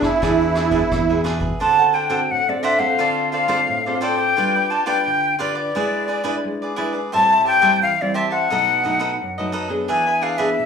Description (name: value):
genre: samba and choro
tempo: 87 BPM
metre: 4/4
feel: straight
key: unclear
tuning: A4 = 439 Hz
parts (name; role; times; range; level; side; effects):
- musette accordion; melody; 0.0-1.2 s; E4; -18 LUFS; right 6 dB; slapback echo
- cavaquinho; accompaniment; 0.0-10.5 s; D4 to A5; -25 LUFS; right 4 dB; slapback echo
- nylon-string guitar; accompaniment; 0.0-10.7 s; F#2 to B4; -26 LUFS; left 1 dB; slapback echo
- vintage brush drum kit; drums; 0.0-1.6 s; hi-hat, kick drum, rim click; -28 LUFS; equal; none
- modern bright fingered electric bass; bass; 0.2-1.5 s; E2; -23 LUFS; equal; none
- silver concert flute; second line; 1.6-10.7 s; D5 to A5; -18 LUFS; left 2 dB; slapback echo
room: wet club reverb, RT60 0.8 s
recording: live gig heard through the venue's PA, club reverb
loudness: -16 LUFS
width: side -6 dB against mid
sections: 0.0-1.6 A section; 1.6-10.7 B section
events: flute solo 1.6-10.7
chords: 0.0 E7; 1.6 D7; 3.0 Dm7; 4.4 G7; 5.8 E7/G#; 7.1 Am7; 8.5 B7; 9.9 E7